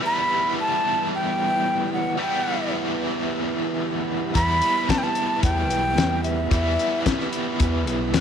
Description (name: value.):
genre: psychedelic rock.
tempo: 111 BPM.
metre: 4/4.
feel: straight.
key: E minor.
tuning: A4 = 439 Hz.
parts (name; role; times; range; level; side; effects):
string machine, violins; sustained chords; 0.0-8.2 s; B3 to E5; -35 LUFS; right 10 dB; ensemble chorus.
biting overdriven guitar; riff; 0.0-8.2 s; E3 to E4; -25 LUFS; equal; tremolo.
breathy mellow silver concert flute; melody; 0.1-7.0 s; E5 to B5; -23 LUFS; equal; slapback echo.
deep dub fingered electric bass; bass; 4.4-8.2 s; B1 to E2; -25 LUFS; equal; none.
cloth-damped thuddy drum kit; drums; 4.4-8.2 s; hi-hat, kick drum, snare drum; -23 LUFS; left 3 dB; none.
room: light reverb, studio reverb.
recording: 1960s-style stereo.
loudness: -20 LUFS.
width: side -8 dB against mid.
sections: 0.0-8.2 A section.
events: none.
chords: 0.0 Em.